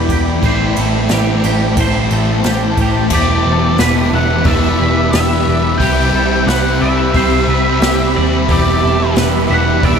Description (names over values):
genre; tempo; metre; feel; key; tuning
rock, shoegaze and dream pop; 89 BPM; 4/4; straight; E minor; A4 = 440 Hz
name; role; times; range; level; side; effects
shimmering ambient pad; sustained chords; 0.0-10.0 s; C4 to B5; -20 LUFS; right 2 dB; chorus, built-in reverb
twangy electric guitar; arpeggios; 0.0-10.0 s; G4 to E5; -22 LUFS; right 4 dB; ensemble chorus, analog delay
overdriven electric guitar; riff; 0.0-10.0 s; A2 to E4; -20 LUFS; right 7 dB; reverse reverb
sludgy distorted guitar; riff; 0.0-10.0 s; E2 to C4; -22 LUFS; equal; overdrive
thick fuzz guitar; riff; 0.0-10.0 s; E2 to C4; -19 LUFS; left 8 dB; distortion, wide subtle chorus
vintage muted picked electric bass; bass; 0.0-10.0 s; E1 to E2; -18 LUFS; equal; none
jazz brush drum kit; drums; 0.1-10.0 s; crash cymbal, hi-hat, kick drum, ride cymbal, snare drum; -20 LUFS; equal; none
octave-fuzz lead guitar; melody; 3.1-10.0 s; D5 to G5; -20 LUFS; left 1 dB; distortion, analog delay
room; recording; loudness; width
moderate huge ambient reverb, RT60 8.8 s; dreamy mix soaked in reverb; -11 LUFS; side -6 dB against mid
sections
0.0-3.1 A section; 3.1-10.0 B section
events
none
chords
0.4 Am7; 3.1 Em7; 5.8 Cmaj7; 8.5 Em7